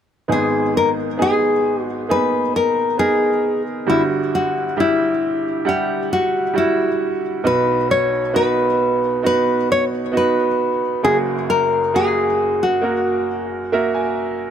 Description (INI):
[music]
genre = pop ballad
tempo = 67 BPM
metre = 4/4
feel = straight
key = unclear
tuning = A4 = 439 Hz
[part]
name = nylon-string guitar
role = melody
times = 0.3-13.7 s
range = E4 to C#5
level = -18 LUFS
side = left 2 dB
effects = ping-pong delay
[part]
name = bright upright piano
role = accompaniment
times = 0.3-14.5 s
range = F#1 to G#5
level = -20 LUFS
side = right 3 dB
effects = none
[sound]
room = light reverb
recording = none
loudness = -16 LUFS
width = side -8 dB against mid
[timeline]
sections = 0.3-14.5 A section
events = upright piano fill 13.3-14.5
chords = 0.3 G#m; 3.9 Emadd9/G; 7.5 B; 11.0 F#add9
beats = | 0.29 1.19 2.08 2.98 | 3.88 4.77 5.67 6.56 | 7.46 8.35 9.25 10.14 | 11.04 11.94 12.83 13.73